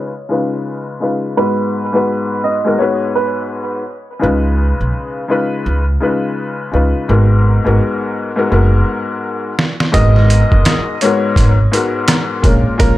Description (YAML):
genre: hip hop, boom-bap hip-hop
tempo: 84 BPM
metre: 4/4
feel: swing 61% on 16ths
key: G# dorian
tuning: A4 = 440 Hz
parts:
  - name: warm upright piano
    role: melody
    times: 0.0-3.5, 9.9-13.0 s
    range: A#4 to D#5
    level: -19 LUFS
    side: right 1 dB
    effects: high-pass filter, low-pass filter, tape echo
  - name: dark upright piano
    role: accompaniment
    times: 0.0-13.0 s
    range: G#2 to B4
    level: -16 LUFS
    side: left 2 dB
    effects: high-pass filter, low-pass filter
  - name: upright bass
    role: bass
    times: 4.2-13.0 s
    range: F#1 to C#2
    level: -12 LUFS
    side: right 1 dB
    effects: none
  - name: trip hop sampler-style drum kit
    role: drums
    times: 9.6-13.0 s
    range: hi-hat, kick drum, rim click, snare drum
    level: -14 LUFS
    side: equal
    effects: none
room: studio ambience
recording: echo-heavy mix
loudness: -12 LUFS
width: side -15 dB against mid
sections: 0.0-9.9 A section; 9.9-13.0 B section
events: filter sweep 0.0-9.9; drum fill 8.5-9.9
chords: 0.0 C#9; 1.4 G#m7; 4.2 C#9; 7.1 G#m9; 12.4 A#m7